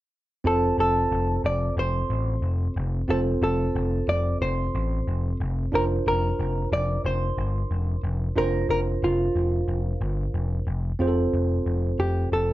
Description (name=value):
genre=1980s-style pop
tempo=91 BPM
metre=4/4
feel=straight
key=F major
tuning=A4 = 440 Hz
part: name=tine electric piano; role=accompaniment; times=0.4-12.5 s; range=C4 to C5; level=-29 LUFS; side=right 2 dB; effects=none
part: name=hollow-body jazz guitar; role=melody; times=0.5-12.5 s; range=F4 to D5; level=-26 LUFS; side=equal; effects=tape echo
part: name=overdriven picked electric bass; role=bass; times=0.5-12.5 s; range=F1 to A1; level=-25 LUFS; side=equal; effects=none
room=moderate small room reverb, RT60 0.5 s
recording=nothing above 8.0 kHz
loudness=-22 LUFS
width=side -16 dB against mid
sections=0.5-11.0 A section; 11.0-12.5 B section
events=none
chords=0.5 F; 5.7 Bbadd9/F; 10.7 N.C.; 11.0 F